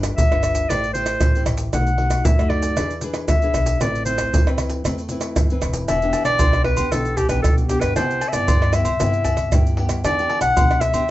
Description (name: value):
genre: samba and choro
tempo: 116 BPM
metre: 4/4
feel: straight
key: A minor, E minor from 5.9 s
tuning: A4 = 440 Hz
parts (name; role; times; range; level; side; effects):
- nylon-string guitar; accompaniment; 0.0-11.1 s; G2 to C5; -27 LUFS; left 2 dB; none
- upright bass; bass; 0.0-11.1 s; E1 to E3; -25 LUFS; equal; none
- maracas, surdo, pandeiro, tamborim and agogo bells; percussion; 0.0-11.1 s; none; -20 LUFS; right 1 dB; none
- clear clarinet; melody; 0.2-11.1 s; G4 to F#5; -21 LUFS; left 1 dB; none
room: wet studio ambience, RT60 0.5 s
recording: band playing live in one room, nothing above 8.0 kHz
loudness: -17 LUFS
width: side -15 dB against mid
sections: 0.0-5.9 A section; 5.9-11.1 B section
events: clarinet solo 0.0-5.9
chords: 0.0 G7; 0.7 Am7; 1.7 B7; 2.8 E7; 3.8 Amadd9; 5.9 Em7; 8.0 Cmaj7; 10.0 Em7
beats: 0.18 0.70 1.22 | 1.73 2.25 2.77 3.29 | 3.81 4.33 4.85 5.37 | 5.89 6.41 6.92 7.44 | 7.96 8.48 9.00 9.52 | 10.04 10.56 11.08